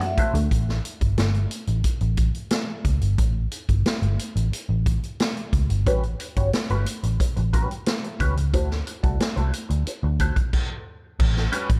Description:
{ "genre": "funk", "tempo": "90 BPM", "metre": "4/4", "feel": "straight", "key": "A mixolydian", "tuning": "A4 = 443 Hz", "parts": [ { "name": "mellow electric guitar", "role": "accompaniment", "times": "0.0-0.4, 5.9-11.7 s", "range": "G3 to D5", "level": "-32 LUFS", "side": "equal", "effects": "wah" }, { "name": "vintage muted picked electric bass", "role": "bass", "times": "0.0-11.8 s", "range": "G1 to F#2", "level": "-25 LUFS", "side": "equal", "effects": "none" }, { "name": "vintage drum kit", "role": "drums", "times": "0.0-11.8 s", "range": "crash cymbal, hi-hat, kick drum, snare drum", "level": "-27 LUFS", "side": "equal", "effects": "none" } ], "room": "little or no reverb", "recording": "none", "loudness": "-24 LUFS", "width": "mono", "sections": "0.5-11.2 A section", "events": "stop 10.5-11.2", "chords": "0.0 D9; 0.5 A13; 8.5 D9; 11.2 A13" }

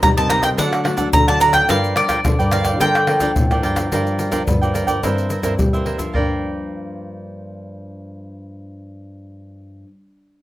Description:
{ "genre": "samba and choro", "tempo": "108 BPM", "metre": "4/4", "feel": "straight", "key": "G minor", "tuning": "A4 = 438 Hz", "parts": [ { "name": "bowl-back mandolin", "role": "melody", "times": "0.0-3.6 s", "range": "D5 to Bb5", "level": "-17 LUFS", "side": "equal", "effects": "none" }, { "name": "nylon-string guitar", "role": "accompaniment", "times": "0.0-9.9 s", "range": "G2 to Eb4", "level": "-27 LUFS", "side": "left 2 dB", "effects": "none" }, { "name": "nylon-string guitar", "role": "bass", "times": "0.0-9.8 s", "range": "G2 to G3", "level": "-23 LUFS", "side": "equal", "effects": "none" }, { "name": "egg shaker, surdo, pandeiro and tamborim", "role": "percussion", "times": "0.0-6.3 s", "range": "none", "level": "-21 LUFS", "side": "left 1 dB", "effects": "none" }, { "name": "cavaquinho", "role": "accompaniment", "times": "0.2-9.9 s", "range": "D4 to G5", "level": "-23 LUFS", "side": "right 3 dB", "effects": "none" } ], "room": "moderate studio reverb, RT60 0.5 s", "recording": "rough home demo mix", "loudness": "-15 LUFS", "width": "side -15 dB against mid", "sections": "0.0-3.9 A section; 3.9-6.1 B section; 6.1-8.4 C section", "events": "none", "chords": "0.0 Cm7; 0.6 D; 1.7 Gm7; 5.0 C7/G; 6.1 Gm7" }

